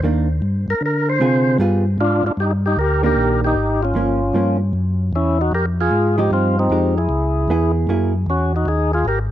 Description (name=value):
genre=jazz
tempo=153 BPM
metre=4/4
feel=swing 66% on 8ths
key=unclear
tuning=A4 = 440 Hz
part: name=vintage hollow-body jazz guitar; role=accompaniment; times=0.0-8.1 s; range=D3 to Ab4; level=-22 LUFS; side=right 3 dB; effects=none
part: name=mellow tonewheel organ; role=bass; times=0.0-9.3 s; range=G1 to D3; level=-19 LUFS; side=equal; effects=chorus vibrato
part: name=percussive tonewheel organ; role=melody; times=0.7-9.2 s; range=C4 to C5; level=-20 LUFS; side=equal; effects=slow rotary speaker, overdrive
room=little or no reverb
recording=dry, close 1970s-style studio recording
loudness=-16 LUFS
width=side -12 dB against mid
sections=0.0-2.4 A section; 2.4-9.3 B section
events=tonewheel organ solo 0.0-2.4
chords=0.0 Cm9 (rootless); 0.8 Dm7b5; 1.6 G7b9; 2.4 Ebmaj7; 4.0 Gm7b5; 4.7 F#5; 5.5 Fm9; 7.1 Dbm7; 7.9 F#9; 8.7 Abmaj7(no3)